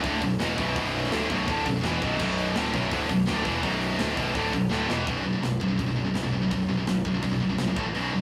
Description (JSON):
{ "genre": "heavy metal", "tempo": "167 BPM", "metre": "4/4", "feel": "straight", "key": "B minor", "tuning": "A4 = 441 Hz", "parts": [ { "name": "heavy high-gain guitar", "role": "riff", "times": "0.0-8.2 s", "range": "B1 to A3", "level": "-34 LUFS", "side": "equal", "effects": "distortion" }, { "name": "scooped high-gain guitar", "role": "riff", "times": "0.0-8.2 s", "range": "B1 to A3", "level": "-30 LUFS", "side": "equal", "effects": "distortion" }, { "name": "tight distorted guitar", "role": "riff", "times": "0.0-5.1 s", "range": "B1 to E3", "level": "-31 LUFS", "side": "equal", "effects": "distortion" }, { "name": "fuzz picked electric bass", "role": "bass", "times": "0.0-8.2 s", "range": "B0 to A#1", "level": "-38 LUFS", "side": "equal", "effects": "overdrive" }, { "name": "tight metal drum kit", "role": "drums", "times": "0.0-8.0 s", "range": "crash cymbal, hi-hat, kick drum, snare drum", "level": "-36 LUFS", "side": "equal", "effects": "none" } ], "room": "wet studio reverb, RT60 0.6 s", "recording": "rough rehearsal-room recording, warm saturation", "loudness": "-26 LUFS", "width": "mono", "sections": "0.0-5.1 A section; 5.1-8.2 B section", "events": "drum fill 4.7-5.1", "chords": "0.0 Bm; 5.1 B5; 7.8 A5" }